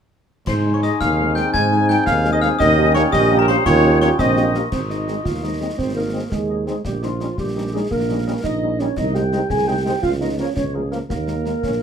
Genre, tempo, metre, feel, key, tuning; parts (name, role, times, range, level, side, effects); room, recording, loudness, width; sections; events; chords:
military-style march for wind band; 113 BPM (dotted quarters); 6/8; straight; Ab major; A4 = 440 Hz
mellow cornet; melody; 0.5-11.5 s; Bb4 to Ab5; -25 LUFS; equal
bright flute section; second line; 0.5-4.7 s; Bb4 to Ab5; -23 LUFS; left 3 dB
dark woodwind section; second line; 0.5-11.8 s; Db4 to Ab5; -26 LUFS; left 2 dB
glockenspiel with brass mallets; second line; 0.5-4.7 s; Bb5 to Ab6; -25 LUFS; left 4 dB
dark trombone section; sustained chords; 0.5-11.8 s; F3 to Eb4; -27 LUFS; left 1 dB
mellow tuba; bass; 0.5-11.8 s; Ab1 to Ab2; -21 LUFS; right 2 dB
concert snare drum, clash cymbals and concert bass drum; drums; 0.5-11.8 s; -29 LUFS; left 1 dB
mellow French horn section; accompaniment; 0.7-11.5 s; F3 to Ab4; -27 LUFS; left 3 dB
dark euphonium; second line; 1.0-11.8 s; F3 to Ab4; -23 LUFS; right 4 dB
moderate small room reverb, RT60 0.6 s; -16 LUFS; side -7 dB against mid
0.5-4.7 A section; 4.7-11.8 B section
0.5 Ab; 2.6 Eb7; 4.7 Ab; 6.8 Eb7/Bb; 9.0 Ab/C; 10.0 Bbm/Db; 11.1 Ebsus4